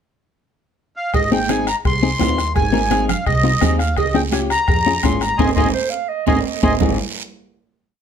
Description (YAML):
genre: latin, cumbia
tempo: 169 BPM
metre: 4/4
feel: straight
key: Ab major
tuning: A4 = 440 Hz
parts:
  - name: accordion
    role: melody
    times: 1.0-6.7 s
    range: Eb5 to C6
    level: -20 LUFS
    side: equal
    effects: light tremolo tuning
  - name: upright bass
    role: bass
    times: 1.1-7.0 s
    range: Ab1 to F2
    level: -22 LUFS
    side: right 1 dB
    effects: none
  - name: bombo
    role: percussion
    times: 1.1-6.9 s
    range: none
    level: -22 LUFS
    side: left 2 dB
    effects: none
  - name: congas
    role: percussion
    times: 1.1-6.9 s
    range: none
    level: -26 LUFS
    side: right 10 dB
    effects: none
  - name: cowbell and timbales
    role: percussion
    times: 1.1-6.9 s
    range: none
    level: -26 LUFS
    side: right 8 dB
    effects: none
  - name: guiro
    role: percussion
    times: 1.1-6.9 s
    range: none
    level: -31 LUFS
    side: right 7 dB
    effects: none
  - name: clean electric guitar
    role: accompaniment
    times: 1.3-7.0 s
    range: C4 to Bb4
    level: -20 LUFS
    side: left 7 dB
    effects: none
  - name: breathy clarinet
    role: second line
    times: 5.7-7.0 s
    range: C5 to F5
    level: -24 LUFS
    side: right 8 dB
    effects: none
room: light reverb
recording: none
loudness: -15 LUFS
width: side -8 dB against mid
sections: 0.0-1.1 pickup bar; 1.1-6.8 A section; 6.8-8.0 final chord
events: band accent 5.4-6.8; drum fill 5.9-6.8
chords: 0.0 N.C.; 1.1 Ab; 4.0 Db; 5.4 Ab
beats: 0.08 0.43 0.79 | 1.14 1.50 1.85 2.20 | 2.56 2.91 3.27 3.62 | 3.98 4.33 4.68 5.04 | 5.39 5.75 6.10 6.46 | 6.81